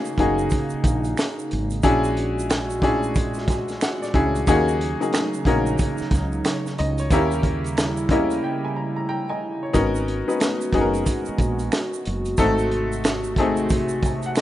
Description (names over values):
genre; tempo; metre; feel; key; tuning
R&B, neo-soul; 91 BPM; 4/4; swing 62% on 16ths; unclear; A4 = 440 Hz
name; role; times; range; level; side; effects
clear upright piano; accompaniment; 0.0-14.4 s; A3 to A#5; -23 LUFS; left 2 dB; none
hollow soft pad; sustained chords; 0.0-14.4 s; A#2 to F#4; -28 LUFS; right 2 dB; chorus
egg shaker and finger snaps; percussion; 0.0-14.4 s; none; -36 LUFS; right 7 dB; none
woody fretless electric bass; bass; 0.2-14.3 s; F#1 to D#2; -26 LUFS; right 1 dB; none
crunchy breakbeat drum kit; drums; 0.2-14.4 s; hi-hat, kick drum, snare drum; -23 LUFS; right 1 dB; none
room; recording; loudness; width
light reverb; rough home demo mix, nothing above 10.7 kHz; -20 LUFS; side -13 dB against mid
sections
0.0-14.4 A section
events
upright piano fill 3.2-4.5, 7.8-9.7; break 8.4-9.7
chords
0.0 Bmaj9 (rootless); 1.8 A#7alt; 4.5 D#m7; 7.1 D#7b9; 9.7 G#m9; 12.4 G#7b9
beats
0.51 1.17 | 1.83 2.49 3.15 3.81 | 4.47 5.13 5.79 6.45 | 7.11 7.77 8.43 9.09 | 9.74 10.40 11.06 11.72 | 12.38 13.04 13.70 14.36